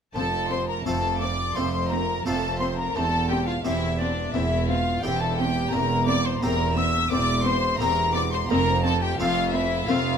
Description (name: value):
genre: classical, baroque-style concerto movement with solo episodes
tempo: 86 BPM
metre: 4/4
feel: straight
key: F major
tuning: A4 = 440 Hz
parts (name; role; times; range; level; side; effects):
- bright baroque flute; melody; 0.1-10.2 s; D5 to E6; -28 LUFS; left 2 dB; none
- dark chamber viola section; accompaniment; 0.1-10.0 s; C4; -30 LUFS; equal; none
- rich chamber violin section; melody; 0.2-10.2 s; D5 to E6; -31 LUFS; equal; none
- warm chamber violin section; second line; 0.2-10.2 s; D4 to E5; -30 LUFS; left 5 dB; none
- harpsichord; accompaniment; 0.2-10.2 s; E2 to G4; -35 LUFS; equal; none
- dark chamber cello section; bass; 0.2-10.2 s; E2 to F2; -28 LUFS; right 2 dB; none
- warm studio double bass section; bass; 0.2-10.2 s; E1 to F1; -30 LUFS; right 3 dB; none
room: moderate recital hall reverb, RT60 1.5 s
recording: none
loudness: -21 LUFS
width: side -7 dB against mid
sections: 0.2-10.2 A section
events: none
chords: 0.2 F; 2.9 C/E; 8.5 F